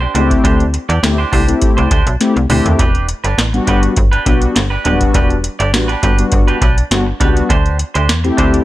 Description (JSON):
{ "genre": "early-eighties boogie funk", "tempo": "102 BPM", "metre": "4/4", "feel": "straight", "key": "E minor", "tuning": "A4 = 437 Hz", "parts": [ { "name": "semi-hollow electric guitar", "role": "riff", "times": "0.0-8.6 s", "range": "D4 to D5", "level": "-20 LUFS", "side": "right 4 dB", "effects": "lush chorus" }, { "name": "slap-like FM bass", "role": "bass", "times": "0.0-8.6 s", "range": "D#1 to E2", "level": "-16 LUFS", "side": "equal", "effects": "none" }, { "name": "mellow synth brass", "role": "accompaniment", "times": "0.1-8.6 s", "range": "F#3 to G4", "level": "-16 LUFS", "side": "left 3 dB", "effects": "chorus" }, { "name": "booming analog drum machine", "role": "drums", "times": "0.1-8.6 s", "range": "hi-hat, kick drum, snare drum, toms", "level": "-15 LUFS", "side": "equal", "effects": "none" } ], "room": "little or no reverb", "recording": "none", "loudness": "-11 LUFS", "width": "side -15 dB against mid", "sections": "0.0-8.6 A section", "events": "drum fill 2.2-2.8", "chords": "0.0 D7sus4; 2.8 Em7; 7.5 D7sus4", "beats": "| 0.44 1.03 1.62 2.21 | 2.79 3.38 3.97 4.56 | 5.15 5.74 6.32 6.91 | 7.50 8.09" }